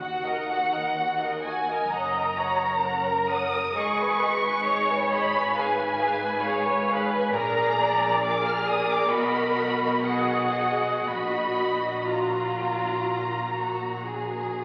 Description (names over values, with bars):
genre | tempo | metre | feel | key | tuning
classical, slow romantic movement for string orchestra | 65 BPM | 4/4 | uneven beats, rubato | Eb minor | A4 = 440 Hz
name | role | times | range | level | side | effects
rich symphonic violin section | melody | 0.0-14.5 s | Gb5 to F6 | -29 LUFS | equal | none
rich chamber violin section | second line | 0.0-14.6 s | F4 to Bb5 | -31 LUFS | equal | none
rich chamber double bass section | bass | 0.0-14.6 s | Gb1 to Eb2 | -43 LUFS | equal | none
rich symphonic cello section | bass | 0.0-14.6 s | Eb2 to B2 | -37 LUFS | equal | none
rich chamber viola section | accompaniment | 1.9-14.5 s | Gb4 to Eb5 | -31 LUFS | equal | none
room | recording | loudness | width
wet scoring stage reverb, RT60 2.0 s | very old 78 rpm record, vinyl crackle | -25 LUFS | mono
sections
0.0-14.6 A section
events
none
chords
0.0 Ebm; 1.9 Gb; 3.8 Abm; 7.3 Bb7; 9.1 B; 11.1 Ebm/Bb